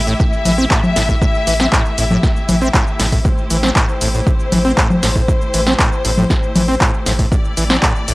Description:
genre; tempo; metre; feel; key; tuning
acid house; 118 BPM; 4/4; straight; A minor; A4 = 440 Hz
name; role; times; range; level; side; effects
clear studio string section; sustained chords; 0.0-8.1 s; A3 to E5; -21 LUFS; left 2 dB; sidechain pumping
saturated sub bass; bass; 0.0-8.1 s; A1; -20 LUFS; equal; sidechain pumping
acid bass, saw; riff; 0.1-8.1 s; A2 to C4; -20 LUFS; equal; analog chorus, sidechain pumping, tape echo
punchy analog drum machine; drums; 0.1-8.1 s; congas, handclaps, hi-hat, shaker, snare drum; -17 LUFS; equal; none
electronic kick drum; drums; 0.2-7.9 s; none; -16 LUFS; equal; none
room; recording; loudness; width
little or no reverb; dry, gritty hardware recording, cassette tape; -12 LUFS; side -20 dB against mid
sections
0.0-8.1 A section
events
none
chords
0.0 Am7

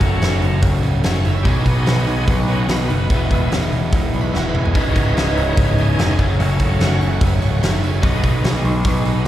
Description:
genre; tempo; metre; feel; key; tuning
classic rock; 146 BPM; 4/4; straight; unclear; A4 = 440 Hz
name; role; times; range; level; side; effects
bright tonewheel organ; sustained chords; 0.0-9.3 s; E3 to F#5; -25 LUFS; equal; slow rotary speaker, overdrive
crunchy overdriven guitar; riff; 0.0-9.3 s; C#2 to B3; -24 LUFS; left 7 dB; slapback echo
overdriven electric guitar; riff; 0.0-9.3 s; C#2 to B4; -25 LUFS; right 9 dB; slapback echo
growling picked electric bass; bass; 0.0-9.3 s; C#1 to B1; -19 LUFS; equal; overdrive
big rock drum kit; drums; 0.0-9.3 s; hi-hat, kick drum, snare drum, toms; -20 LUFS; equal; none
room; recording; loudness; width
light reverb, studio reverb; live gig heard through the venue's PA, recital hall reverb; -15 LUFS; side -13 dB against mid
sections
0.0-9.3 A section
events
tonewheel organ solo 0.0-9.3; drum fill 4.3-4.7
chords
0.0 F#m; 1.5 B; 3.1 E; 4.7 C#madd9; 6.2 F#m; 8.0 B

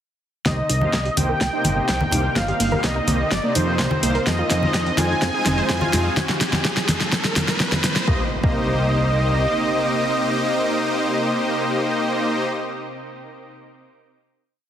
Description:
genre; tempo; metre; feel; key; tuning
progressive house; 126 BPM; 4/4; straight; C minor; A4 = 439 Hz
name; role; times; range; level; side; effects
wide unison lead; melody; 0.5-12.4 s; C5 to Ab5; -25 LUFS; right 1 dB; tape echo
shimmering ambient pad; sustained chords; 1.6-12.1 s; C3 to D6; -30 LUFS; right 2 dB; chorus, built-in reverb, sidechain pumping
soft supersaw; stabs; 0.5-12.4 s; C3 to F5; -24 LUFS; left 1 dB; sidechain pumping, low-pass filter, tape echo
fat analog bass; bass; 0.5-9.5 s; F1 to F2; -24 LUFS; equal; sidechain pumping
deep house drum kit; drums; 0.5-8.1 s; hi-hat, snare drum; -23 LUFS; equal; sidechain pumping on hats
dusty soul sampler-style drum kit; drums; 0.5-8.1 s; hi-hat, snare drum; -35 LUFS; left 1 dB; none
electronic kick drum; drums; 0.5-8.6 s; none; -24 LUFS; equal; high-pass filter on kick
congas; percussion; 0.5-7.8 s; none; -27 LUFS; left 1 dB; sidechain pumping on perc
riser and impact; sound effects; 4.2-12.1 s; none; -31 LUFS; equal; none
wide unison pluck; arpeggios; 0.6-8.6 s; Bb3 to C5; -28 LUFS; right 2 dB; vintage 12-bit sampler grit, sidechain pumping, tape echo
room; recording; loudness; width
moderate lush hall reverb, RT60 1.6 s; heavily compressed radio sound; -18 LUFS; side -10 dB against mid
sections
0.5-8.1 build; 8.1-11.9 final chord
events
build-up 0.5-8.1; drum fill 0.5-8.1; filter sweep on synth pluck 0.5-6.2; filter sweep on supersaw synth 0.5-6.2; riser 4.2-8.1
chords
0.5 Cm7; 4.3 Fm7; 8.1 Cm7

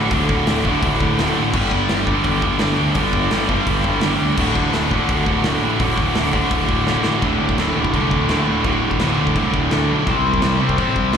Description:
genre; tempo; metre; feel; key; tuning
punk rock; 169 BPM; 4/4; straight; D mixolydian; A4 = 438 Hz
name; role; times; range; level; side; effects
biting overdriven guitar; riff; 0.0-11.2 s; D2 to G4; -21 LUFS; right 9 dB; none
cranked stack guitar; riff; 0.0-11.2 s; D2 to C4; -23 LUFS; left 11 dB; overdrive
heavy high-gain guitar; riff; 0.0-11.2 s; D2 to C4; -24 LUFS; left 1 dB; distortion, slapback echo
fuzz picked electric bass; bass; 0.0-11.2 s; D1 to D2; -22 LUFS; equal; overdrive
big rock drum kit; drums; 0.1-11.2 s; crash cymbal, hi-hat, kick drum, snare drum; -23 LUFS; left 1 dB; none
room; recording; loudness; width
small room ambience; live gig heard through the venue's PA, club ambience; -16 LUFS; side -7 dB against mid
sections
0.0-7.2 A section; 7.2-11.2 B section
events
drum fill 6.9-7.2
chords
0.0 D; 1.5 G; 4.4 D; 7.2 D5; 10.1 C5

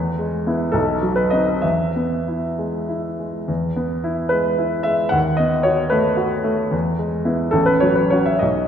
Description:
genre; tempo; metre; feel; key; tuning
classical, romantic character piece for solo piano; 64-77 BPM (dotted quarters); 6/8; rubato; E major; A4 = 441 Hz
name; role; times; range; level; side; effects
clear grand piano; solo; 0.0-8.7 s; A1 to F#5; -17 LUFS; equal; none
room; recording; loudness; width
wet scoring stage reverb, RT60 1.8 s; none; -17 LUFS; side -8 dB against mid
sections
0.0-3.5 A section; 3.5-8.7 A section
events
none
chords
0.0 E; 0.8 B7b9; 1.6 E; 5.1 B7/D#; 6.7 E; 7.5 F#m/A

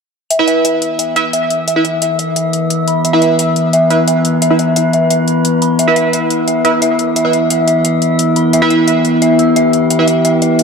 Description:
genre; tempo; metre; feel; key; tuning
dark technical drum and bass; 175 BPM; 4/4; straight; E minor; A4 = 435 Hz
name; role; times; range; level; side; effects
metallic inharmonic drone; sustained chords; 0.8-10.6 s; E3 to E5; -13 LUFS; left 1 dB; chorus, built-in reverb, phaser
dark detuned synth bell; arpeggios; 0.3-10.6 s; E5 to E6; -16 LUFS; left 1 dB; chorus, phaser, low-pass filter, digital delay
electronic hi-hat; drums; 0.3-10.6 s; none; -19 LUFS; left 2 dB; none
band-passed chord stab; stabs; 0.4-10.1 s; E4 to E5; -16 LUFS; right 2 dB; phaser, wide subtle chorus, cassette tape, digital delay
room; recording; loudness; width
moderate lush hall reverb, RT60 2.1 s; none; -10 LUFS; side -5 dB against mid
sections
0.3-10.6 A section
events
filter sweep on synth bell 0.3-10.6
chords
0.3 E5

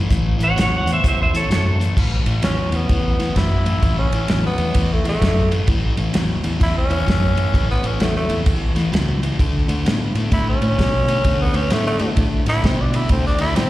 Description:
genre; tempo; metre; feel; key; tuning
electric blues shuffle; 129 BPM; 4/4; swing 63% on 8ths; A major; A4 = 439 Hz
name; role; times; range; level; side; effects
overdriven semi-hollow guitar; riff; 0.0-13.7 s; A2 to B3; -24 LUFS; left 3 dB; none
fingered electric bass; bass; 0.0-13.7 s; A1 to B2; -20 LUFS; equal; none
warm soul drum kit; drums; 0.1-13.7 s; crash cymbal, hi-hat, kick drum, ride cymbal, snare drum; -21 LUFS; equal; none
clean lap steel guitar; second line; 0.4-2.0 s; A4 to F#5; -20 LUFS; right 2 dB; plate reverb, slapback echo
growling tenor saxophone; melody; 2.4-13.7 s; A3 to E4; -23 LUFS; right 1 dB; plate reverb, slapback echo, analog delay
room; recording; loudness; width
little or no reverb; live gig heard through the venue's PA, recital hall reverb; -16 LUFS; side -16 dB against mid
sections
0.0-2.0 A section; 2.0-13.7 A section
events
electric slide guitar solo 0.0-2.0; tenor saxophone solo 2.0-13.7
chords
0.0 A; 9.4 D5

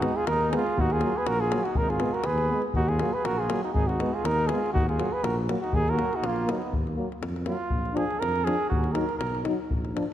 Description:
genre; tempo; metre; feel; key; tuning
balkan folk, Balkan brass band; 121 BPM; 2/4; swing 55% on 16ths; Eb minor; A4 = 440 Hz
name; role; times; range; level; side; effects
dark cornet; melody; 0.0-6.7 s; Eb4 to Cb5; -28 LUFS; equal; none
warm flugelhorn; second line; 0.0-9.4 s; Bb3 to Bb4; -32 LUFS; right 3 dB; none
clear euphonium; accompaniment; 0.0-10.0 s; Bb3 to Eb4; -34 LUFS; left 4 dB; none
warm euphonium; accompaniment; 0.0-10.1 s; F3 to Ab3; -36 LUFS; right 4 dB; none
dark tuba; bass; 0.0-10.0 s; Ab1 to F2; -30 LUFS; equal; none
davul; percussion; 0.0-10.1 s; none; -32 LUFS; left 2 dB; none
room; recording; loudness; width
moderate concert hall reverb, RT60 2.4 s; none; -24 LUFS; side -11 dB against mid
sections
0.0-6.7 A section; 6.7-10.1 B section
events
flugelhorn solo 6.7-10.1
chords
0.0 Abm; 0.8 Ebm; 1.8 Abm; 2.8 Ebm; 3.7 Abm; 4.7 Ebm; 7.7 Bb; 8.7 Ebm

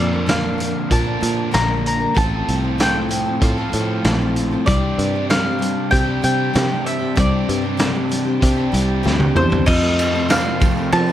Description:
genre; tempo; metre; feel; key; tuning
folk rock and heartland rock; 96 BPM; 4/4; straight; unclear; A4 = 438 Hz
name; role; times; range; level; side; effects
mandolin; melody; 0.0-11.1 s; C5 to Bb5; -23 LUFS; equal; none
picked twelve-string acoustic guitar; accompaniment; 0.0-11.1 s; Bb2 to Bb4; -24 LUFS; left 4 dB; none
crunchy overdriven guitar; riff; 0.0-11.1 s; F2 to Bb4; -23 LUFS; right 1 dB; none
picked electric bass; bass; 0.0-11.1 s; A1 to F3; -22 LUFS; equal; none
loose indie drum kit; drums; 0.3-11.1 s; crash cymbal, hi-hat, kick drum, ride cymbal, snare drum, toms; -20 LUFS; equal; none
tambourine; percussion; 9.7-11.1 s; none; -38 LUFS; right 6 dB; none
room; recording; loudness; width
small room ambience; dark, warm production; -16 LUFS; side -11 dB against mid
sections
0.0-9.7 A section; 9.7-11.1 B section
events
drum fill 9.1-9.7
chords
0.0 Bb; 2.2 F/A; 4.7 Csus2; 9.7 F

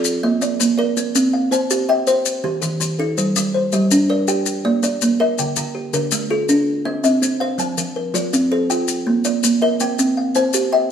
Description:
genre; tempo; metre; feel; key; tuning
southern african traditional, mbira-style interlocking cycle; 109 BPM (dotted quarters); 12/8; straight; C equiheptatonic; A4 = 440 Hz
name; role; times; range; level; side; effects
kalimba; arpeggios; 0.0-10.9 s; D3-29c to G5; -19 LUFS; left 1 dB; none
kalimba; arpeggios; 0.0-10.9 s; D3-29c to A5-43c; -20 LUFS; right 2 dB; none
maracas; percussion; 0.0-10.7 s; none; -24 LUFS; left 7 dB; none
room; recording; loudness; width
wet stone room reverb, RT60 1.2 s; band playing live in one room; -16 LUFS; side -8 dB against mid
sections
1.0-10.9 A section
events
none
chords
0.0 Bb; 1.0 Cm; 2.1 Eb; 3.2 Gm; 4.3 Bb; 5.4 Dm; 6.5 Cm; 7.6 F; 8.7 Bb; 9.8 Cm

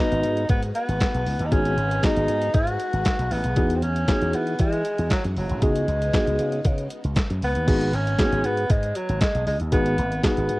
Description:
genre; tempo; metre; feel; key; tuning
early-eighties boogie funk; 117 BPM; 4/4; straight; unclear; A4 = 440 Hz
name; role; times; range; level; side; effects
breathy alto saxophone; melody; 0.0-10.6 s; F#3 to F#4; -26 LUFS; equal; cassette tape
tine electric piano; accompaniment; 0.0-10.6 s; A#3 to B4; -25 LUFS; left 1 dB; overdrive, fast stereo tremolo, cassette tape
string machine, violins; sustained chords; 0.0-7.7 s; C#3 to B4; -37 LUFS; equal; none
slap bass with an envelope filter; bass; 0.1-10.6 s; F#1 to E3; -26 LUFS; equal; none
detuned 8-bit digital drum machine; drums; 0.1-10.6 s; crash cymbal, handclaps, hi-hat, kick drum, snare drum; -23 LUFS; equal; cassette tape
room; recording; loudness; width
light reverb; home recording on cassette; -20 LUFS; side -20 dB against mid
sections
0.0-7.7 A section; 7.7-10.6 A section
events
none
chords
0.0 G#m7; 3.6 Emaj9; 5.6 C#9sus4; 7.7 G#m7

